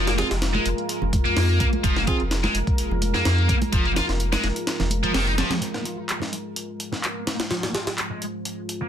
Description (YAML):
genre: breakbeat, breaks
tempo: 127 BPM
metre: 4/4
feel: swing 53% on 16ths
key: unclear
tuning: A4 = 444 Hz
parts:
  - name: deep dark ambient pad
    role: sustained chords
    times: 0.0-8.9 s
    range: Ab3 to C5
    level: -30 LUFS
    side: equal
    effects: chorus, built-in reverb, sidechain pumping
  - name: scooped high-gain guitar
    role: riff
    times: 0.0-8.9 s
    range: Eb3 to F4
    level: -26 LUFS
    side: equal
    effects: distortion, tube saturation, low-pass filter, digital delay
  - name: saturated sub bass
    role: bass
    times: 0.0-5.4 s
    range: F1 to F2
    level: -24 LUFS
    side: equal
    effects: none
  - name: breakbeat sampler-style drum kit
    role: drums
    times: 0.1-8.8 s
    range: hi-hat, kick drum, snare drum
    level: -25 LUFS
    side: equal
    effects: high-pass filter on snare, small room ambience, high-pass filter on hats, high-pass filter on kick
  - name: punchy analog drum machine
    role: drums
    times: 0.1-8.1 s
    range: handclaps, hi-hat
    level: -31 LUFS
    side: equal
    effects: small room ambience
  - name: tine electric piano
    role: stabs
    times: 0.2-2.2 s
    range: C4 to Ab4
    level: -31 LUFS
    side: right 5 dB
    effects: medium tremolo, digital delay
  - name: congas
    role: percussion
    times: 0.2-5.6 s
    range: none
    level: -32 LUFS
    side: right 3 dB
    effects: none
room: light reverb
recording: dense, heavily limited modern master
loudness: -21 LUFS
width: side -9 dB against mid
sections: 0.0-5.6 A section; 5.6-8.9 B section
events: kick drops out 4.7-5.6; filter sweep on ambient pad 5.6-8.9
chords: 0.0 Fm